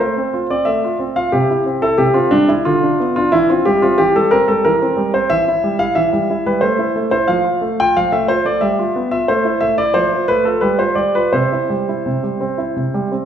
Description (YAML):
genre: classical-period piano sonatina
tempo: 90 BPM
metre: 3/4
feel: rubato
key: C major from 5.3 s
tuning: A4 = 445 Hz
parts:
  - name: warm concert grand piano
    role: solo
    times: 0.0-13.3 s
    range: C3 to G5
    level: -14 LUFS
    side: equal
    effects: none
room: wet recital hall reverb, RT60 1.6 s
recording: recorded in a church or concert hall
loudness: -13 LUFS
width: side -9 dB against mid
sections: 0.0-13.3 A section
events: none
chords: 0.0 F/A; 1.3 C; 2.7 Bdim/D; 3.3 C/E; 5.3 Em; 6.6 Am; 7.3 F; 8.6 G6; 9.3 Am; 10.0 F; 10.6 G7; 11.3 C